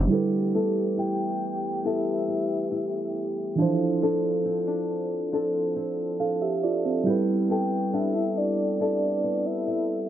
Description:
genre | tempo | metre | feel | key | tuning
R&B | 69 BPM | 4/4 | straight | G mixolydian | A4 = 440 Hz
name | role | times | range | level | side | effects
muted felt-like synth keys | accompaniment | 0.0-10.1 s | D3 to F5 | -27 LUFS | right 5 dB | chorus
nylon-string guitar | arpeggios | 0.0-10.1 s | D3 to A4 | -29 LUFS | left 5 dB | tape echo
warm French horn section | sustained chords | 0.1-10.1 s | E3 to A4 | -30 LUFS | left 1 dB | none
soft octave-layered synth lead | melody | 1.0-10.1 s | D5 to G5 | -29 LUFS | equal | chorus, tremolo, tape echo
room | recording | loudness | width
moderate lush hall reverb, RT60 2.5 s | low-pass filter | -23 LUFS | side -11 dB against mid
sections
0.1-10.1 A section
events
none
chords
0.1 G69; 3.6 Dm7/F; 7.1 G69

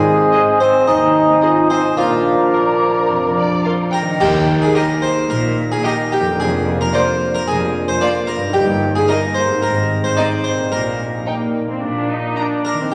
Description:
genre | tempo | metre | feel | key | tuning
cinematic, playful, whimsical film cue | 110 BPM | 4/4 | straight | Eb major | A4 = 441 Hz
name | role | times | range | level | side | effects
harpsichord | melody | 0.0-12.9 s | F4 to Eb5 | -22 LUFS | equal | none
mellow clarinet | second line | 0.0-3.9 s | Bb4 to C5 | -26 LUFS | equal | none
mellow hollow small flute group | second line | 0.0-3.9 s | Ab5 to Bb5 | -25 LUFS | equal | none
warm oboe | second line | 0.0-3.9 s | D5 to Eb5 | -23 LUFS | equal | none
mellow bassoon | accompaniment | 0.0-3.9 s | F3 to Eb4 | -19 LUFS | equal | none
mellow French horn section | sustained chords | 0.0-12.9 s | G3 to F4 | -26 LUFS | equal | none
concert harp | arpeggios | 0.0-12.9 s | F2 to Eb5 | -26 LUFS | equal | none
rich chamber double bass section | bass | 0.0-12.3 s | F1 to Eb2 | -28 LUFS | equal | none
warm chamber cello section | bass | 0.0-12.3 s | Eb2 to Bb2 | -29 LUFS | equal | none
rich chamber violin section | melody | 0.3-12.5 s | Bb4 to Bb5 | -29 LUFS | equal | none
rich chamber violin section | second line | 0.3-12.4 s | D4 to C5 | -30 LUFS | equal | none
rich chamber viola section | accompaniment | 0.3-12.8 s | Bb3 to Ab4 | -28 LUFS | equal | none
clash cymbals and concert bass drum | percussion | 4.2-5.3 s | none | -34 LUFS | equal | none
room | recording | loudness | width
wet scoring stage reverb, RT60 1.8 s | none | -16 LUFS | mono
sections
0.0-4.2 A section; 4.2-12.9 B section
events
band accent 4.2-4.7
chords
0.0 Ab; 2.0 Bb; 4.2 Eb; 6.4 Bb/F; 8.5 Eb/G; 9.6 Ab; 10.7 Eb/Bb; 11.8 Bb

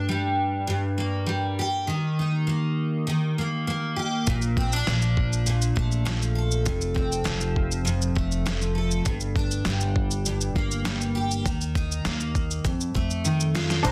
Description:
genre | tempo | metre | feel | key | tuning
acoustic pop | 100 BPM | 4/4 | straight | unclear | A4 = 439 Hz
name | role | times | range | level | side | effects
picked steel-string acoustic guitar | accompaniment | 0.0-13.9 s | F2 to A4 | -28 LUFS | equal | double-tracked
upright bass | bass | 4.3-13.9 s | F1 to F2 | -30 LUFS | equal | none
dusty soul sampler-style drum kit | drums | 4.3-13.9 s | crash cymbal, kick drum, shaker, snare drum | -30 LUFS | equal | none
felt-muted upright piano | accompaniment | 13.8-13.9 s | D4 to Bb5 | -24 LUFS | equal | none
room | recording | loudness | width
moderate studio reverb, RT60 0.6 s | dense, heavily limited modern master | -25 LUFS | mono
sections
0.0-13.8 A section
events
drum fill 13.2-13.8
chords
0.0 Gm; 1.9 Eb; 4.3 Bbmaj7; 6.7 F; 9.1 Gm; 11.5 Eb5; 12.7 F7

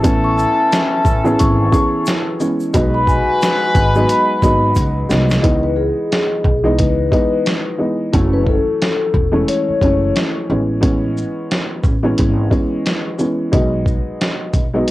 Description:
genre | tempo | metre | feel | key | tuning
hip hop, boom-bap hip-hop | 89 BPM | 4/4 | swing 60% on 16ths | C# minor | A4 = 441 Hz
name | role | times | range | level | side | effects
dark upright piano | accompaniment | 0.0-14.9 s | E3 to G#4 | -18 LUFS | equal | cassette tape
clear horn section | stabs | 0.0-5.1 s | E3 to B4 | -20 LUFS | left 1 dB | cassette tape, analog delay
upright bass | bass | 0.0-14.8 s | E1 to C#2 | -19 LUFS | equal | none
boom bap sampler-style drum kit | drums | 0.0-14.9 s | hi-hat, kick drum, shaker, snare drum | -18 LUFS | equal | cassette tape
egg shaker | percussion | 0.0-5.4 s | none | -40 LUFS | right 4 dB | none
vibraphone with soft mallets | melody | 0.2-10.1 s | G#4 to C#6 | -19 LUFS | left 2 dB | cassette tape, analog delay
room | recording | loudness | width
little or no reverb | home recording on cassette | -13 LUFS | side -17 dB against mid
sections
0.0-5.4 A section; 5.4-14.9 B section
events
drum fill 4.8-5.4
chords
0.0 Amaj7; 2.7 G#m7; 5.4 C#m7; 8.1 F#m7; 10.5 Amaj7; 13.5 G#m7/B

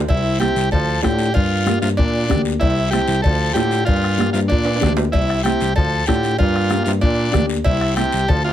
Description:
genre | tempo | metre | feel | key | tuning
latin, cumbia | 190 BPM | 4/4 | straight | unclear | A4 = 440 Hz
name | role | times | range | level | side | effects
barky tine electric piano | bass | 0.0-8.5 s | C2 to Bb2 | -21 LUFS | equal | overdrive
combo organ | melody | 0.1-8.5 s | D4 to A4 | -21 LUFS | equal | none
brilliant trombone | second line | 0.1-8.5 s | Bb2 to F3 | -28 LUFS | right 5 dB | none
bombo | percussion | 0.1-8.4 s | none | -20 LUFS | left 1 dB | none
congas | percussion | 0.1-8.4 s | none | -27 LUFS | right 6 dB | none
cowbell and timbales | percussion | 0.1-8.4 s | none | -27 LUFS | right 5 dB | none
guiro | percussion | 0.1-8.5 s | none | -32 LUFS | left 6 dB | none
dark upright piano | accompaniment | 0.4-8.2 s | A3 to G4 | -24 LUFS | left 4 dB | none
room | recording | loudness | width
light reverb | none | -15 LUFS | side -11 dB against mid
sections
0.1-8.5 A section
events
drum fill 4.7-5.1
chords
0.1 C; 0.7 Dm; 1.4 Gm7; 2.6 C; 3.2 Dm; 3.9 Gm7; 5.1 C; 5.8 Dm; 6.4 Gm7; 7.7 C

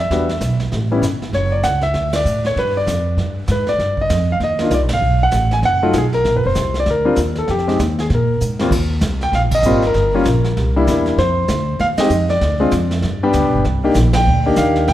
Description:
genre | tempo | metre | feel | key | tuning
jazz piano trio | 195 BPM | 4/4 | swing 61% on 8ths | unclear | A4 = 441 Hz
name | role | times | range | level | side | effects
clear concert grand piano | melody | 0.0-14.9 s | Eb2 to Ab5 | -17 LUFS | left 1 dB | none
upright bass | bass | 0.0-14.9 s | F1 to Bb2 | -18 LUFS | equal | none
vintage brush drum kit | drums | 0.1-14.9 s | brushed snare drum, crash cymbal, hi-hat, kick drum, ride cymbal, snare drum | -26 LUFS | right 1 dB | none
room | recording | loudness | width
light reverb | none | -14 LUFS | side -13 dB against mid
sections
0.0-8.7 A section; 8.7-14.9 B section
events
band accent 2.1, 4.9, 9.5, 11.9, 14.1; drum fill 8.4-8.7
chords
0.1 Em9; 0.7 A7(no3); 1.3 Dmaj9; 2.6 G5; 3.8 Cmadd9; 5.0 B7(no3); 6.3 Bb69; 7.5 Fm7; 8.1 Bb5; 8.7 Eb6; 9.9 Gm; 10.6 C7; 11.2 F7(no3); 12.4 Dm; 13.0 G; 13.6 Cm9

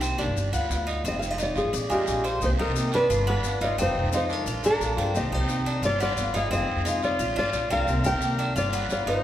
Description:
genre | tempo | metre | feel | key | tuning
latin, Cuban son and guajira | 176 BPM | 4/4 | straight | C minor | A4 = 435 Hz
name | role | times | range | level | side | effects
nylon-string guitar | accompaniment | 0.0-9.2 s | C3 to G4 | -31 LUFS | left 3 dB | none
Cuban tres | arpeggios | 0.0-9.2 s | Ab3 to D5 | -31 LUFS | right 3 dB | none
upright bass | bass | 0.0-9.2 s | F1 to C3 | -28 LUFS | equal | none
guiro | percussion | 0.0-9.2 s | none | -38 LUFS | right 6 dB | none
maracas | percussion | 0.0-9.2 s | none | -39 LUFS | left 7 dB | none
nylon-string guitar | melody | 1.1-9.2 s | G4 to G5 | -27 LUFS | equal | none
clear trumpet | second line | 1.9-9.2 s | Bb3 to Bb4 | -33 LUFS | left 4 dB | none
room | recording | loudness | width
wet recital hall reverb, RT60 1.7 s | recorded in a church or concert hall | -23 LUFS | side -12 dB against mid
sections
0.0-2.4 A section; 2.4-9.2 B section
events
nylon-string guitar solo 0.0-2.4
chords
0.4 G7; 1.1 Fm7; 1.7 Bb7; 2.4 Cm7; 3.1 G7; 3.8 Fm7; 4.5 Bb7; 5.1 Cm7; 5.8 G7; 6.5 Fm7; 7.2 Bb7; 7.9 Cm7; 8.6 G7

